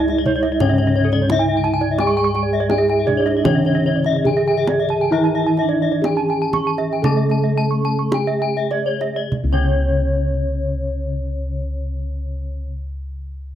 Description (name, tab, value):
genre	Balinese gamelan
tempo	48-87 BPM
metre	4/4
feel	straight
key	C# pelog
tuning	A4 = 436 Hz
part	gamelan-type bronze metallophone	melody	0.0-12.7 s	C#4 to A4-20c	-21 LUFS	right 1 dB	none
part	gamelan-type bronze metallophone	accompaniment	0.0-12.7 s	C#3 to A3-20c	-26 LUFS	left 3 dB	none
part	gamelan-type bronze metallophone	arpeggios	0.0-12.7 s	A4-20c to C#6	-25 LUFS	right 6 dB	none
part	gamelan-type bossed gongs	bass	0.0-12.6 s	C#2 to G#4-30c	-22 LUFS	left 1 dB	none
part	gamelan-type bronze metallophone	arpeggios	0.1-12.7 s	C#5 to A5-20c	-24 LUFS	left 8 dB	none
part	kendang	percussion	0.1-9.9 s	none	-25 LUFS	right 2 dB	none
part	vibraphone with soft mallets	second line	2.6-8.5 s	C#4 to A4-20c	-26 LUFS	right 5 dB	none
room	studio reverb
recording	dry, close 1970s-style studio recording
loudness	-16 LUFS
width	side -10 dB against mid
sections	0.0-9.3 A section; 9.3-13.6 B section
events	slowing down 2.0-9.3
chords	none